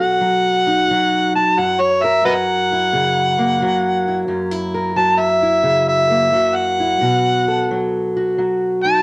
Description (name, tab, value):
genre	acoustic country blues, solo or duo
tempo	88 BPM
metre	4/4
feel	swing 66% on 8ths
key	F# mixolydian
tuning	A4 = 440 Hz
part	overdriven harmonica	melody	0.0-9.0 s	B4 to A5	-18 LUFS	equal	slapback echo
part	fingerpicked steel-string acoustic guitar	accompaniment	0.0-9.0 s	F#2 to A#4	-22 LUFS	equal	none
room	little or no reverb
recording	dry, close 1970s-style studio recording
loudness	-17 LUFS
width	mono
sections	0.0-9.0 A section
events	harmonica solo 0.0-9.0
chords	0.0 B7; 1.6 F#7; 7.0 B7(no3)